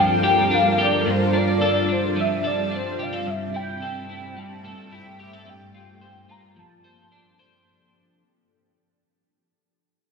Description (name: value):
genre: dream pop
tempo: 109 BPM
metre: 4/4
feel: straight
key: unclear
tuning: A4 = 439 Hz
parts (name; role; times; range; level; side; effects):
- warm velvety synth lead; melody; 0.0-7.4 s; C5 to Bb5; -23 LUFS; left 1 dB; chorus, phaser, ping-pong delay
- granular cloud pad; sustained chords; 0.0-7.7 s; G2 to Bb4; -25 LUFS; right 1 dB; built-in reverb, lush chorus
- electric guitar at the edge of break-up; arpeggios; 0.0-8.2 s; G2 to C5; -24 LUFS; left 1 dB; analog chorus, ping-pong delay
room: wet lush hall reverb, RT60 1.9 s, studio ambience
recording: bright 1980s-style digital production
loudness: -19 LUFS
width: side -5 dB against mid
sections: 0.0-7.7 A section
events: fade-out 0.0-7.7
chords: 0.0 Gm7; 1.1 Dm7/G; 3.3 Am7/G; 5.5 C7sus4/G; 6.6 F6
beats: 0.51 | 1.06 1.61 2.16 2.71 | 3.26 3.81 4.36 4.91 | 5.46 6.01 6.56 7.11